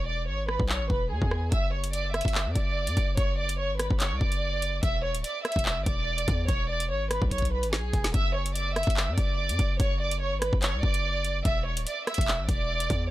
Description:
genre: hip hop, drill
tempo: 145 BPM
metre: 4/4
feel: half-time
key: unclear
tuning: A4 = 441 Hz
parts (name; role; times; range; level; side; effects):
- warm chamber violin section; melody; 0.0-13.1 s; G#4 to E6; -30 LUFS; right 2 dB; low-pass filter, tape echo
- hard-hitting 808-style bass; bass; 0.0-13.1 s; D1 to F#2; -30 LUFS; equal; none
- drill drum kit; drums; 0.5-13.0 s; handclaps, hi-hat, kick drum, rim click, snare drum; -28 LUFS; equal; none
room: little or no reverb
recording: dry, gritty hardware recording, transformer saturation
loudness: -25 LUFS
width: side -15 dB against mid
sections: 0.0-8.1 A section; 8.1-13.1 B section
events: break 0.0-1.5; drum fill 7.3-8.1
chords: 0.0 E7; 1.5 F#5; 4.8 E7; 8.1 F#5; 11.5 E7(no3)

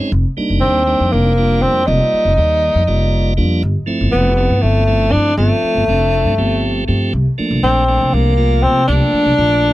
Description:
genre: electric jazz fusion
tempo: 240 BPM (eighths)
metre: 7/8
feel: straight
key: unclear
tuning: A4 = 441 Hz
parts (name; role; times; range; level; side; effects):
- tonewheel organ; accompaniment; 0.0-9.7 s; F3 to D5; -20 LUFS; right 2 dB; overdrive, stopped rotary speaker
- upright bass; bass; 0.0-9.7 s; F1 to C3; -16 LUFS; equal; none
- clear tenor saxophone; melody; 0.6-9.7 s; A3 to Eb4; -15 LUFS; equal; none
room: little or no reverb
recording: dry, close 1970s-style studio recording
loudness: -12 LUFS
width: side -16 dB against mid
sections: 0.1-9.7 A section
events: none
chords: 0.1 F13sus4; 3.6 G13sus4; 7.1 C13sus4

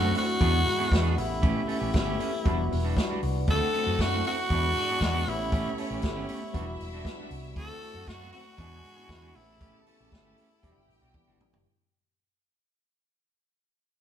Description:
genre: disco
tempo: 117 BPM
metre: 4/4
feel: straight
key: E minor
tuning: A4 = 440 Hz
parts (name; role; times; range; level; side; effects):
- raspy tenor saxophone; melody; 0.0-11.4 s; E4 to A4; -31 LUFS; equal; none
- electric guitar at the edge of break-up; accompaniment; 0.0-11.6 s; G3 to A4; -36 LUFS; right 5 dB; none
- tine electric piano; accompaniment; 0.0-11.7 s; G3 to F#5; -34 LUFS; left 4 dB; phaser
- dark French horn section; sustained chords; 0.0-11.6 s; C#3 to G4; -42 LUFS; right 1 dB; none
- hollow-body short-scale fingered electric bass; bass; 0.0-11.6 s; E1 to G#2; -31 LUFS; equal; none
- vintage drum kit; drums; 0.1-11.7 s; hi-hat, kick drum, snare drum, toms; -30 LUFS; equal; none
- clear studio string section; second line; 3.5-11.6 s; C#4 to A5; -40 LUFS; left 1 dB; none
room: moderate stone room reverb, RT60 1.2 s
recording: band playing live in one room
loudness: -24 LUFS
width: side -10 dB against mid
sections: 0.0-11.7 A section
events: fade-out 0.0-11.7; tine electric piano fill 2.5-3.5; drum fill 11.1-11.7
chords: 0.4 E7; 1.2 A7; 2.5 Em9; 3.5 D7; 4.5 E7; 5.3 A7; 6.5 Em9; 7.6 D7; 8.6 E7; 9.4 A7; 10.6 Em9

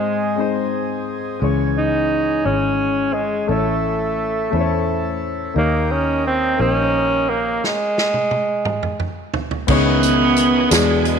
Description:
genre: slow gospel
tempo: 58 BPM (dotted quarters)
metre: 6/8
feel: straight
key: unclear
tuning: A4 = 440 Hz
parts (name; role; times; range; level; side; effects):
- clear alto saxophone; melody; 0.0-9.0 s; G#3 to D#4; -20 LUFS; right 2 dB; slapback echo
- warm concert grand piano; accompaniment; 0.0-11.2 s; G#2 to D5; -22 LUFS; left 10 dB; none
- hand-pumped harmonium; sustained chords; 0.0-7.6 s; G#4 to A5; -28 LUFS; right 3 dB; none
- fingered electric bass; bass; 1.4-11.2 s; G#1 to E2; -23 LUFS; right 2 dB; none
- natural country drum kit; drums; 7.6-11.2 s; crash cymbal, hi-hat, kick drum, snare drum, toms; -22 LUFS; right 1 dB; none
- mellow saxophone section; melody; 9.7-11.2 s; B2 to B3; -16 LUFS; right 2 dB; slapback echo
- bright tonewheel organ; sustained chords; 9.7-11.2 s; C#3 to G#4; -25 LUFS; right 11 dB; slow rotary speaker, overdrive, chorus vibrato
- tambourine; percussion; 10.0-11.0 s; none; -25 LUFS; right 17 dB; none
room: moderate echo chamber reverb, RT60 2.5 s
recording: 1960s-style stereo with parts hard left and right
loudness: -16 LUFS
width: side -6 dB against mid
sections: 0.0-9.7 A section; 9.7-11.2 B section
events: drum fill 7.6-9.7; stop 7.6-9.7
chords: 0.0 G#; 1.4 C#m; 3.5 A; 5.6 D#7; 7.6 N.C.; 9.7 C#m9

